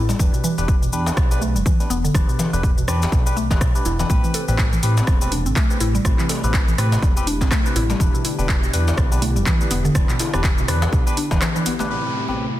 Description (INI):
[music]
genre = afro house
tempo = 123 BPM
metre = 4/4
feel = swing 58% on 16ths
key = A minor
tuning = A4 = 440 Hz
[part]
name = mallet-like synth pluck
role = arpeggios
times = 0.0-11.9 s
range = B2 to A4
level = -25 LUFS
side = equal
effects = chorus, sidechain pumping, tape echo
[part]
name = dark detuned saw bass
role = bass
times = 0.0-11.4 s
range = E1 to A2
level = -22 LUFS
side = equal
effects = sidechain pumping
[part]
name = house drum kit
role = drums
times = 0.1-11.9 s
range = handclaps, hi-hat, rim click, shaker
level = -26 LUFS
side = equal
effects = overdrive
[part]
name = djembe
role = percussion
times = 0.1-12.4 s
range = none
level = -32 LUFS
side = left 2 dB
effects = none
[part]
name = barky tine electric piano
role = stabs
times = 0.2-12.5 s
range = A2 to B4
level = -28 LUFS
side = left 2 dB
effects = phaser, sidechain pumping, tape echo
[part]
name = electronic kick drum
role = drums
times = 0.2-11.4 s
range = none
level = -18 LUFS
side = equal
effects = overdrive
[part]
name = warm analog pad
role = sustained chords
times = 4.1-12.6 s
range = C3 to G4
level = -30 LUFS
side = equal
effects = chorus, sidechain pumping
[part]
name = downlifter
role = sound effects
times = 11.9-12.6 s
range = none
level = -29 LUFS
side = equal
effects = none
[sound]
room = light reverb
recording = dense, heavily limited modern master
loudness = -17 LUFS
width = side -14 dB against mid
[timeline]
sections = 0.0-11.9 A section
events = filter sweep on synth pluck 0.0-11.9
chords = 0.2 Em7; 4.1 Am7; 8.0 Em7; 11.9 Am7